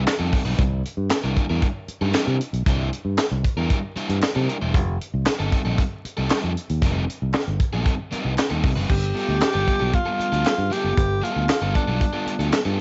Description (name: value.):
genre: funk.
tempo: 116 BPM.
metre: 4/4.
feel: straight.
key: G mixolydian.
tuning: A4 = 441 Hz.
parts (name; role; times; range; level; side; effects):
crunchy overdriven guitar; accompaniment; 0.0-12.8 s; G3 to C5; -30 LUFS; equal; spring reverb.
fingered electric bass; bass; 0.0-12.8 s; E1 to C3; -26 LUFS; equal; none.
tight funk drum kit; drums; 0.1-12.7 s; crash cymbal, handclaps, hi-hat, kick drum, snare drum; -25 LUFS; equal; cassette tape.
group handclap; percussion; 0.1-12.7 s; none; -40 LUFS; equal; none.
warm tenor saxophone; melody; 8.9-12.8 s; D4 to G4; -27 LUFS; equal; cassette tape.
room: light reverb.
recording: home recording on cassette, vinyl crackle, nothing above 7.8 kHz.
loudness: -22 LUFS.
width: mono.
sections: 0.0-8.9 A section; 8.9-12.8 B section.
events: none.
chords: 0.0 F9; 0.6 C9; 4.7 F9; 8.9 G9.